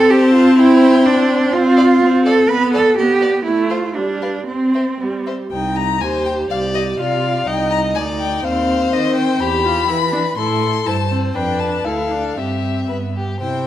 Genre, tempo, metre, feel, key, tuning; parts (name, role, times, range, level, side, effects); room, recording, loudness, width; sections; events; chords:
quick classical-period movement for string quartet; 124 BPM; 2/4; rubato; C major, C minor from 5.5 s; A4 = 440 Hz
warm violin; melody; 0.0-13.7 s; D5 to C6; -23 LUFS; left 6 dB
rich viola; accompaniment; 0.0-13.7 s; G3 to G4; -17 LUFS; equal
rich cello; bass; 0.0-13.7 s; C2 to B4; -18 LUFS; right 3 dB
rich violin; second line; 0.1-13.7 s; G4 to F5; -23 LUFS; left 3 dB
wet recital hall reverb, RT60 1.4 s; -14 LUFS; side -12 dB against mid
0.0-5.5 A section; 5.5-13.4 B section
0.1 F/C; 0.6 C; 1.5 Dm7/C (rootless); 2.5 G/B; 3.5 F/A; 4.0 G5; 4.5 C5; 5.5 Cm; 6.5 G5/C; 7.5 Cm; 8.4 Cm/Eb; 9.4 Em; 10.4 Am; 11.4 Dm/F; 12.4 C/G; 12.9 G